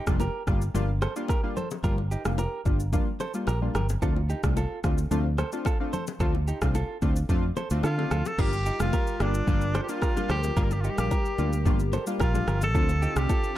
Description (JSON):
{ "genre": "afrobeats", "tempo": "110 BPM", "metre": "4/4", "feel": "straight", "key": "G minor", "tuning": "A4 = 443 Hz", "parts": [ { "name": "direct-recorded clean electric guitar", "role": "riff", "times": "0.0-13.5 s", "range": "Eb4 to C5", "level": "-36 LUFS", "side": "right 4 dB", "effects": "spring reverb, ping-pong delay" }, { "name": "warm analog keys", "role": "accompaniment", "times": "0.1-13.3 s", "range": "G3 to F4", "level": "-33 LUFS", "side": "left 2 dB", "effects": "chorus" }, { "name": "fingered electric bass", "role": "bass", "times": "0.1-13.3 s", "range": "F1 to D3", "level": "-27 LUFS", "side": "equal", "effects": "none" }, { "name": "afro-pop drum kit", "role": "drums", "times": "0.1-13.6 s", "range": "crash cymbal, kick drum, rim click, shaker", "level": "-28 LUFS", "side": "equal", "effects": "none" }, { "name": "bongos and congas", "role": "percussion", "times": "0.2-13.4 s", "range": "none", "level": "-36 LUFS", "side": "left 6 dB", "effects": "none" }, { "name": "breathy tenor saxophone", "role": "melody", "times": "7.9-13.6 s", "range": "D4 to Bb4", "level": "-31 LUFS", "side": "equal", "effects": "ping-pong delay" }, { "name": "hollow soft pad", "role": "sustained chords", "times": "8.4-13.6 s", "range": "D3 to Bb4", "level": "-36 LUFS", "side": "right 1 dB", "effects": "chorus" } ], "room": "little or no reverb", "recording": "dark, warm production", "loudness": "-24 LUFS", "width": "side -14 dB against mid", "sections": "0.0-8.4 A section; 8.4-13.6 B section", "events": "none", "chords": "0.0 Gm7; 4.0 Dm7; 8.4 Gm7; 12.7 Dm7", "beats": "0.20 0.75 1.29 | 1.84 2.38 2.93 3.48 | 4.02 4.57 5.11 5.66 | 6.20 6.75 7.29 7.84 | 8.38 8.93 9.47 10.02 | 10.57 11.11 11.66 12.20 | 12.75 13.29" }